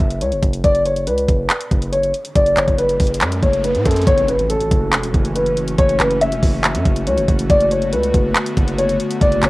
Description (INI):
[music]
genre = hip hop, trap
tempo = 140 BPM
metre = 4/4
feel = half-time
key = F# minor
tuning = A4 = 436 Hz
[part]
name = dark grand piano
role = melody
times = 0.0-9.5 s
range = A4 to E5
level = -18 LUFS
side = left 1 dB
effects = cassette tape
[part]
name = distorted 808-style bass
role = bass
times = 0.0-9.5 s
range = E1 to A2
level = -22 LUFS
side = equal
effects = distortion
[part]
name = trap drum kit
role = drums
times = 0.0-9.5 s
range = handclaps, hi-hat, kick drum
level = -18 LUFS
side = equal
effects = cassette tape
[part]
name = riser and impact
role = sound effects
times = 2.3-5.8 s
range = none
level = -30 LUFS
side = right 1 dB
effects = none
[part]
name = airy breathy pad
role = sustained chords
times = 4.5-9.5 s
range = D3 to F#4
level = -24 LUFS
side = left 1 dB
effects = chorus, cassette tape
[sound]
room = moderate spring reverb, RT60 1.4 s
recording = home recording on cassette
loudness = -14 LUFS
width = side -20 dB against mid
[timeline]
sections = 0.0-4.1 A section; 4.1-9.5 B section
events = riser 2.3-4.1; impact 4.1-5.8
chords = 0.0 F#7(no3); 0.6 B5/F#; 4.1 F#m7; 7.5 Bm7/F#